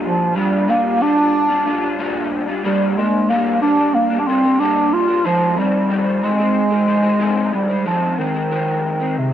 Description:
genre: indie pop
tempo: 92 BPM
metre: 4/4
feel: straight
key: F dorian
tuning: A4 = 440 Hz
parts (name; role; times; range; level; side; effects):
- mellow bass clarinet; melody; 0.0-9.3 s; C3 to F4; -16 LUFS; right 1 dB; analog chorus, tape echo
- electric guitar through a small old amp; accompaniment; 0.0-9.3 s; F2 to F4; -22 LUFS; left 3 dB; analog chorus, warbly pitch drift
room: moderate studio reverb, RT60 0.6 s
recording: worn, warbling old tape, cassette tape, warbly pitch drift, nothing above 10.7 kHz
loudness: -15 LUFS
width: side -10 dB against mid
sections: 0.0-7.9 A section; 7.9-9.3 B section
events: none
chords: 0.0 Bb6; 2.6 Gm; 5.2 Fm7

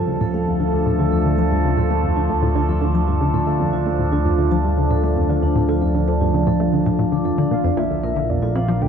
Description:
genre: ambient, sequencer-driven space music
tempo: 115 BPM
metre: 4/4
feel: straight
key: D minor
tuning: A4 = 440 Hz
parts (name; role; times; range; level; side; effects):
- evolving wavetable pad; sustained chords; 0.0-8.9 s; F3 to Bb4; -21 LUFS; right 1 dB; phaser, built-in reverb
- vibraphone with medium mallets; arpeggios; 0.0-8.9 s; D4 to D6; -26 LUFS; moving between left 5 dB and right 2 dB; auto-pan, tape echo
- tight sequenced synth; riff; 0.0-8.9 s; D2 to A3; -22 LUFS; equal; chorus, tape echo
- fat analog bass; bass; 0.0-8.9 s; Bb1 to D2; -22 LUFS; equal; none
- soft octave-layered synth lead; melody; 7.5-8.9 s; D5 to G5; -26 LUFS; right 1 dB; chorus, phaser, tape echo
room: moderate plate reverb, RT60 3.4 s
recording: dark, warm production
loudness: -16 LUFS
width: side -7 dB against mid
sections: 0.0-8.9 A section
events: none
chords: 0.0 Dm; 7.5 Bb

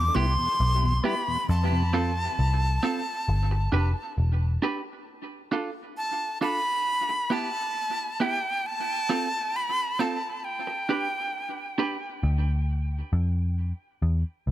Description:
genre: reggae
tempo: 67 BPM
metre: 4/4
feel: straight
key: D dorian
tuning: A4 = 440 Hz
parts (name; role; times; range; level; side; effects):
- breathy bright jazz flute; melody; 0.0-11.8 s; G5 to D6; -28 LUFS; equal; tape echo
- mellow tonewheel organ; accompaniment; 0.0-1.8 s; E2 to E4; -33 LUFS; left 2 dB; overdrive, chorus vibrato, slow rotary speaker, tape echo
- vintage muted picked electric bass; bass; 0.0-4.6, 12.2-14.5 s; E1 to F2; -23 LUFS; equal; none
- clean electric guitar; accompaniment; 0.1-12.0 s; B3 to B4; -31 LUFS; right 4 dB; tremolo, low-pass filter, tape echo
room: light reverb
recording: none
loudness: -24 LUFS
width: side -13 dB against mid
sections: 0.0-12.2 A section; 12.2-14.5 B section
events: break 1.5-12.2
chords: 0.0 Em; 1.5 F; 3.3 G; 5.1 Dm; 6.9 Em; 8.6 F; 10.4 G; 12.2 Dm

